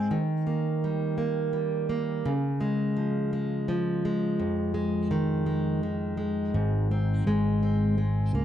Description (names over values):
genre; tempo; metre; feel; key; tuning
six-eight pop ballad; 56 BPM (dotted quarters); 6/8; straight; Ab major; A4 = 440 Hz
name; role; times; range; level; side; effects
picked plugged-in steel-string acoustic guitar; accompaniment; 0.0-8.4 s; F2 to C4; -26 LUFS; equal; none
fingered electric bass; bass; 6.5-8.4 s; Ab1 to Db2; -26 LUFS; equal; none
room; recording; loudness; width
moderate plate reverb, RT60 2.6 s; dark, warm production; -25 LUFS; side -10 dB against mid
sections
0.0-8.4 A section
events
none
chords
0.1 Eb; 2.2 Db; 4.4 Fm7; 6.6 Ab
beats
| 0.11 1.18 | 2.25 3.32 | 4.39 5.47 | 6.55 7.63